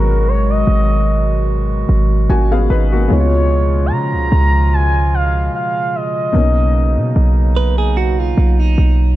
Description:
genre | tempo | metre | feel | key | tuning
contemporary R&B | 74 BPM | 4/4 | swing 54% on 16ths | G# dorian | A4 = 442 Hz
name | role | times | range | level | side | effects
gliding portamento lead | melody | 0.0-7.6 s | A#4 to A#5 | -20 LUFS | equal | chorus, digital delay
felt-muted upright piano | accompaniment | 0.0-9.2 s | G#2 to G#5 | -22 LUFS | left 4 dB | none
mellow woodwind section | sustained chords | 0.0-9.2 s | B2 to F#4 | -23 LUFS | right 2 dB | stereo widening
warm 808-style bass | bass | 0.0-9.2 s | G#1 to C#3 | -14 LUFS | equal | none
direct-recorded clean electric guitar | arpeggios | 7.6-9.2 s | D#4 to B4 | -21 LUFS | right 9 dB | digital delay
room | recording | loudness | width
small room ambience | dark, warm production | -12 LUFS | side -15 dB against mid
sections
0.0-9.2 A section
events
felt piano fill 1.9-3.1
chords
0.0 G#m7; 3.1 C#7; 6.3 Bmaj9

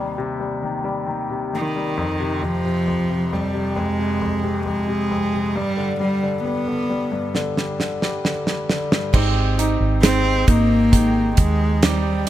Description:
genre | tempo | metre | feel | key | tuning
pop ballad | 67 BPM | 4/4 | straight | unclear | A4 = 440 Hz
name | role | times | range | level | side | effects
warm cello | melody | 0.0-12.3 s | Eb3 to C4 | -21 LUFS | equal | none
clear concert grand piano | accompaniment | 0.0-12.3 s | Eb2 to Eb4 | -24 LUFS | left 3 dB | none
damped 70s drum kit | drums | 7.3-12.3 s | crash cymbal, hi-hat, kick drum, snare drum | -18 LUFS | right 1 dB | none
fingerpicked steel-string acoustic guitar | arpeggios | 9.1-12.3 s | Ab3 to G4 | -26 LUFS | right 7 dB | none
vintage muted fingered electric bass | bass | 9.1-12.2 s | Ab1 to Eb2 | -20 LUFS | right 1 dB | none
room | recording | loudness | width
studio reverb | none | -18 LUFS | side -13 dB against mid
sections
0.0-9.1 A section; 9.1-12.3 B section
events
drum fill 7.3-9.1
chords
0.0 Cm/Eb; 2.0 Fm; 5.6 G; 9.1 Abmaj7

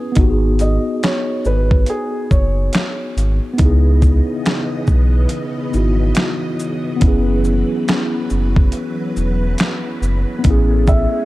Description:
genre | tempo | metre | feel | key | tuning
lo-fi hip hop | 70 BPM | 4/4 | swing 60% on 16ths | C# minor | A4 = 440 Hz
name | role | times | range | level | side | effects
felt-muted upright piano | melody | 0.0-3.6, 10.9-11.2 s | G#4 to E5 | -23 LUFS | right 1 dB | analog delay
mellow tine electric piano | accompaniment | 0.0-11.2 s | B3 to B4 | -21 LUFS | left 1 dB | medium stereo tremolo, cassette tape
sub bass with octave | bass | 0.2-11.1 s | E1 to C#2 | -16 LUFS | equal | none
dusty soul sampler-style drum kit | drums | 0.2-11.1 s | finger snaps, hi-hat, kick drum, shaker, snare drum | -16 LUFS | equal | overdrive
string machine, full ensemble | sustained chords | 3.6-11.2 s | C#3 to D#5 | -26 LUFS | equal | phaser, ensemble chorus
room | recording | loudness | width
digital ambience | dark, warm production | -14 LUFS | side -17 dB against mid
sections
0.0-11.2 A section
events
none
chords
0.2 G#m7; 3.6 C#m9; 7.0 F#7sus4; 10.5 Amaj9

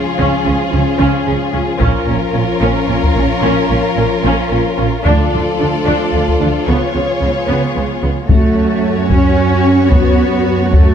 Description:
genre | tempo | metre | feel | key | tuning
cinematic, epic orchestral film score | 74 BPM (dotted quarters) | 6/8 | straight | unclear | A4 = 440 Hz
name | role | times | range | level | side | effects
warm symphonic violin section | melody | 0.0-10.9 s | G#4 to C#5 | -22 LUFS | left 4 dB | none
warm symphonic violin section | second line | 0.0-10.9 s | E#4 to F#4 | -23 LUFS | left 2 dB | none
mellow French horn section | sustained chords | 0.0-10.9 s | E#3 to C#5 | -22 LUFS | left 4 dB | none
warm symphonic string section | sustained chords | 0.0-10.9 s | A3 to D5 | -22 LUFS | left 2 dB | none
rich symphonic viola section | accompaniment | 0.2-10.9 s | B3 to F#4 | -21 LUFS | right 1 dB | none
rich symphonic double bass section | bass | 0.2-10.9 s | A#1 to F#2 | -19 LUFS | right 3 dB | none
warm symphonic cello section | bass | 0.2-10.9 s | A#2 to C#4 | -18 LUFS | right 2 dB | none
taiko ensemble | drums | 1.8-10.9 s | none | -14 LUFS | equal | none
room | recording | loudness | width
moderate scoring stage reverb, RT60 1.6 s | dark, warm production | -11 LUFS | side -8 dB against mid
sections
0.0-8.3 A section; 8.3-10.9 B section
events
build-up 0.0-8.3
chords
0.0 C#; 1.8 A#m; 5.1 Dm; 6.7 C#7; 8.3 F#m

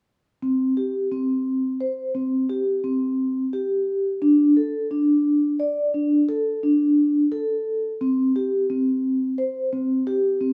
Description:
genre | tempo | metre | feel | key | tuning
contemporary instrumental, contemporary | 174 BPM (eighths) | 11/8 | straight | unclear | A4 = 440 Hz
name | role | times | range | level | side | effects
vibraphone with soft mallets | arpeggios | 0.4-10.5 s | C4 to D5 | -22 LUFS | equal | none
room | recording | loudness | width
moderate recital hall reverb, RT60 1.4 s | recorded in a church or concert hall | -22 LUFS | mono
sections
0.4-10.5 A section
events
none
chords
none

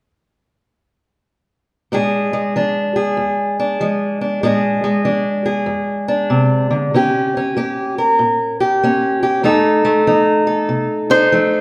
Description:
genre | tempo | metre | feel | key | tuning
acoustic country blues, solo or duo | 96 BPM | 4/4 | swing 65% on 8ths | Bb mixolydian | A4 = 435 Hz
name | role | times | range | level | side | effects
fingerpicked steel-string acoustic guitar | accompaniment | 1.9-11.6 s | F2 to Bb4 | -17 LUFS | equal | none
lap resonator guitar | melody | 11.1-11.6 s | C5 | -15 LUFS | equal | none
room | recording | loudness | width
wet recital hall reverb, RT60 1.6 s | recorded in a church or concert hall | -17 LUFS | mono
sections
1.9-11.6 A section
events
none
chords
1.9 Bb7; 6.9 Eb7; 9.4 F7

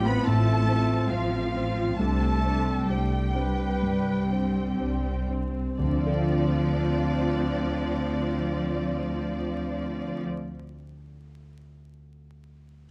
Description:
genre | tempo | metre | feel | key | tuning
cinematic, emotional film score for orchestra | 58-74 BPM | 4/4 | rubato | D minor | A4 = 436 Hz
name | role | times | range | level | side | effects
rich studio violin section | melody | 0.0-10.2 s | D5 to B5 | -41 LUFS | equal | none
clear clarinet | second line | 0.0-10.2 s | D4 to B4 | -38 LUFS | equal | none
dark studio violin section | second line | 0.0-10.2 s | D5 to B5 | -39 LUFS | equal | none
dark concert grand piano | accompaniment | 0.0-12.9 s | C2 to F5 | -34 LUFS | equal | none
warm studio viola section | accompaniment | 0.0-10.2 s | A3 to B4 | -34 LUFS | equal | none
concert harp | arpeggios | 0.0-10.6 s | A2 to F5 | -34 LUFS | equal | none
rich studio cello section | bass | 0.0-10.2 s | F3 to B3 | -35 LUFS | equal | none
rich studio double bass section | bass | 0.0-10.2 s | A1 to D2 | -33 LUFS | equal | none
room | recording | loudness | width
light reverb | close, detailed microphones, vinyl crackle | -26 LUFS | mono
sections
0.0-5.8 A section; 5.8-9.8 B section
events
slowing down 0.0-5.8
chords
0.0 F/A; 2.0 Csus2; 5.8 Dm7

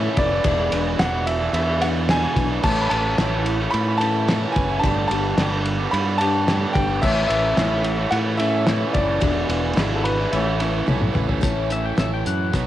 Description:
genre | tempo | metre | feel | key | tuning
folk rock and heartland rock | 109 BPM | 4/4 | straight | A major | A4 = 440 Hz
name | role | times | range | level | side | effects
bright concert grand piano | melody | 0.0-10.8 s | A4 to B5 | -24 LUFS | equal | cassette tape, tape echo
picked steel-string acoustic guitar | accompaniment | 0.0-12.7 s | A2 to B4 | -28 LUFS | left 10 dB | cassette tape
overdriven semi-hollow guitar | riff | 0.0-12.7 s | E2 to G4 | -26 LUFS | right 8 dB | cassette tape
modern bright fingered electric bass | bass | 0.0-12.7 s | E1 to A2 | -24 LUFS | equal | none
cloth-damped thuddy drum kit | drums | 0.2-12.7 s | crash cymbal, hi-hat, kick drum, ride cymbal, snare drum, toms | -23 LUFS | equal | none
pedal steel guitar | second line | 11.7-12.5 s | E5 to G5 | -28 LUFS | left 7 dB | cassette tape
room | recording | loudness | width
light reverb | home recording on cassette | -18 LUFS | side -13 dB against mid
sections
0.0-11.4 A section; 11.4-12.7 B section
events
drum fill 10.9-11.4; pedal steel guitar solo 11.4-12.7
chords
0.4 E7; 2.6 Aadd9; 4.8 Gadd9; 7.0 Aadd9; 9.2 E7; 10.3 Aadd9; 11.4 A

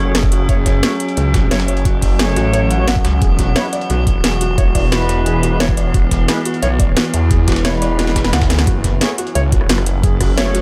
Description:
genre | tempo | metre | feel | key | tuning
dark technical drum and bass | 176 BPM | 4/4 | straight | F# minor | A4 = 438 Hz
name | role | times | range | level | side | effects
metallic inharmonic drone | sustained chords | 0.0-10.6 s | E3 to G#4 | -24 LUFS | equal | chorus, built-in reverb, sidechain pumping
dark brass ensemble | stabs | 0.0-10.6 s | G#3 to C#5 | -27 LUFS | equal | dub echo
snarling distorted saw bass | bass | 0.0-10.6 s | E1 to E2 | -19 LUFS | equal | distortion, overdrive
felt-muted upright piano | arpeggios | 0.1-10.6 s | F#4 to F#5 | -27 LUFS | equal | sidechain pumping, dub echo
breakbeat sampler-style drum kit | drums | 0.1-10.6 s | hi-hat, snare drum | -31 LUFS | equal | high-pass filter on hats, high-pass filter on snare, high-pass filter on room
drum and bass drum kit | drums | 0.1-10.6 s | hi-hat, rim click, snare drum | -22 LUFS | equal | none
electronic kick drum | drums | 0.2-10.3 s | none | -18 LUFS | equal | none
room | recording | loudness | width
light reverb, digital ambience | none | -15 LUFS | mono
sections
0.0-10.6 A section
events
drum fill 8.0-8.7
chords
0.0 F#m; 3.2 E; 8.7 F#m

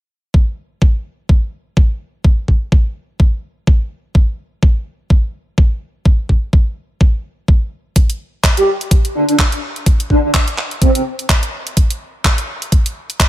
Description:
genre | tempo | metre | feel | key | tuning
bass house | 126 BPM | 4/4 | swing 57% on 16ths | unclear | A4 = 440 Hz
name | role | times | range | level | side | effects
electronic kick drum | drums | 0.3-13.3 s | none | -11 LUFS | equal | studio reverb
garage drum kit | drums | 8.0-13.3 s | handclaps, hi-hat | -19 LUFS | equal | studio reverb
breathy flute-like synth lead | melody | 8.6-11.0 s | C4 to G4 | -16 LUFS | right 1 dB | ensemble chorus, ping-pong delay
room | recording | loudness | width
digital ambience | none | -13 LUFS | side -14 dB against mid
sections
0.3-13.3 A section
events
none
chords
none

